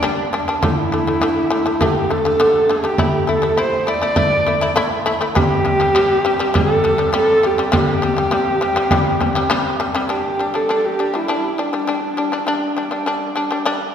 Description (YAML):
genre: mongolian traditional, Mongolian folk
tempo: 101 BPM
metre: 4/4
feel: straight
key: G zhi mode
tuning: A4 = 440 Hz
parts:
  - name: warm horsehead fiddle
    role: melody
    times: 0.0-13.3 s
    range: D4 to D5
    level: -18 LUFS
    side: right 1 dB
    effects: none
  - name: shamisen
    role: arpeggios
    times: 0.0-13.9 s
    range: C3 to E4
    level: -19 LUFS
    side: left 2 dB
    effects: tape echo
  - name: frame drum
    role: percussion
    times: 0.0-9.9 s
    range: none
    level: -21 LUFS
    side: equal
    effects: none
room: wet concert hall reverb, RT60 2.4 s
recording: heard from further back in the room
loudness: -15 LUFS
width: side -8 dB against mid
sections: 0.0-10.1 A section; 10.1-13.9 B section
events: none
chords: 0.0 G5; 0.6 D5; 3.0 A5; 5.4 C5; 10.1 G5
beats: 0.03 | 0.62 1.22 1.81 2.40 | 2.99 3.58 4.18 4.77 | 5.36 5.95 6.54 7.14 | 7.73 8.32 8.91 9.51 | 10.10 10.69 11.29 11.88 | 12.48 13.07 13.67